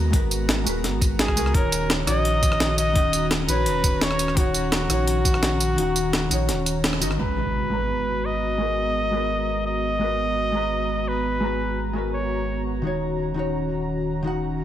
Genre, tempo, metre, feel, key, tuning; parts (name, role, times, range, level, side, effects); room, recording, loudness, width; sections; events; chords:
liquid drum and bass; 170 BPM; 4/4; straight; G# minor; A4 = 440 Hz
hollow-body jazz guitar; accompaniment; 0.0-14.6 s; D#3 to A#5; -27 LUFS; equal; low-pass filter, digital delay
airy breathy pad; sustained chords; 0.0-14.6 s; B3 to A#5; -31 LUFS; left 1 dB; chorus, sidechain pumping
sub bass with octave; bass; 0.0-14.6 s; D#1 to D#2; -28 LUFS; equal
breakbeat sampler-style drum kit; drums; 0.1-7.2 s; hi-hat, rim click, snare drum, tambourine; -25 LUFS; equal; low-pass filter on hats, studio reverb, low-pass filter on cymbals, low-pass filter on perc, low-pass filter on snare
electronic kick drum; drums; 0.1-5.3 s; -22 LUFS; equal; studio reverb
clear flugelhorn; melody; 1.2-12.6 s; F#4 to D#5; -25 LUFS; equal; digital delay
impact; sound effects; 7.2-8.6 s; -32 LUFS; equal
light reverb, digital ambience; -20 LUFS; side -11 dB against mid
0.0-7.2 A section; 7.2-14.6 B section
drop 0.0-7.2; kick drops out 5.8-7.2; band accent 6.8; impact 7.2-8.6; filter sweep on hollow-body jazz guitar 7.2-14.6; filter sweep on analog synth pad 7.2-14.6
0.0 G#m9; 1.5 D#m7; 7.2 G#m9; 12.8 D#m7